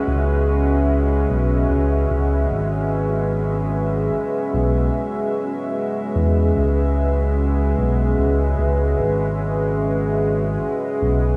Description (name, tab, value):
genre	ambient dub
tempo	74 BPM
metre	4/4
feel	swing 54% on 16ths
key	C# minor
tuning	A4 = 442 Hz
part	deep dark ambient pad	sustained chords	0.0-11.4 s	G#3 to E5	-23 LUFS	equal	chorus, built-in reverb
part	round analog bass	bass	0.1-11.4 s	G#1 to E2	-22 LUFS	equal	none
room	wet huge ambient reverb, RT60 7.5 s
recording	dreamy mix soaked in reverb, studio reverb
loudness	-20 LUFS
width	mono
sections	0.0-11.4 A section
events	none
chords	0.0 C#m7